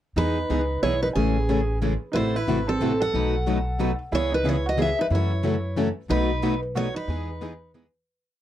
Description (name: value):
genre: acoustic string swing (jazz manouche)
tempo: 182 BPM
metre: 3/4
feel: swing 60% on 8ths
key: E major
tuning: A4 = 440 Hz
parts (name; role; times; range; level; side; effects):
- picked steel-string acoustic guitar; melody; 0.2-7.7 s; G#4 to F#5; -27 LUFS; equal; none
- felt-muted upright piano; second line; 0.2-7.7 s; C4 to A4; -30 LUFS; right 4 dB; slapback echo
- picked plugged-in steel-string acoustic guitar; accompaniment; 0.2-7.9 s; B2 to G#4; -27 LUFS; left 5 dB; none
- picked steel-string acoustic guitar; accompaniment; 0.2-7.9 s; B2 to B4; -31 LUFS; right 8 dB; none
- upright bass; bass; 0.2-7.9 s; G#1 to F#2; -27 LUFS; equal; none
room: little or no reverb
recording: dry, close 1970s-style studio recording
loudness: -22 LUFS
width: side -12 dB against mid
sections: 0.2-8.1 A section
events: fade-out 6.5-8.1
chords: 0.2 Emaj7; 1.2 Amaj7; 2.1 Am6; 3.1 B7; 4.1 C#m7; 5.1 F#m7; 6.1 B7; 7.1 Emaj7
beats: | 0.17 0.50 0.83 | 1.16 1.49 1.82 | 2.15 2.48 2.81 | 3.13 3.46 3.79 | 4.12 4.45 4.78 | 5.11 5.44 5.77 | 6.10 6.43 6.76 | 7.09 7.42 7.75